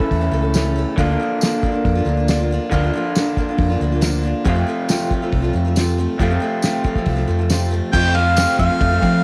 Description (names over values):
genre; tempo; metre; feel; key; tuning
folk rock and heartland rock; 138 BPM; 4/4; straight; unclear; A4 = 440 Hz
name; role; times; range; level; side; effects
picked steel-string acoustic guitar; accompaniment; 0.0-9.2 s; F2 to A4; -26 LUFS; equal; cassette tape
electric guitar through a small old amp; riff; 0.0-9.2 s; F2 to F4; -24 LUFS; equal; cassette tape
cloth-damped thuddy drum kit; drums; 0.0-9.1 s; crash cymbal, hi-hat, kick drum, ride cymbal, snare drum; -24 LUFS; equal; cassette tape
hollow-body short-scale fingered electric bass; bass; 0.1-9.2 s; C2 to F3; -21 LUFS; equal; none
tambourine; percussion; 0.5-8.5 s; none; -32 LUFS; equal; none
warm harmonica; melody; 7.9-9.2 s; F5 to G5; -20 LUFS; equal; cassette tape
room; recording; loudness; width
light reverb; home recording on cassette; -18 LUFS; mono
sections
0.0-7.9 A section; 7.9-9.2 B section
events
none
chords
0.0 A; 1.0 Bb/D; 4.5 F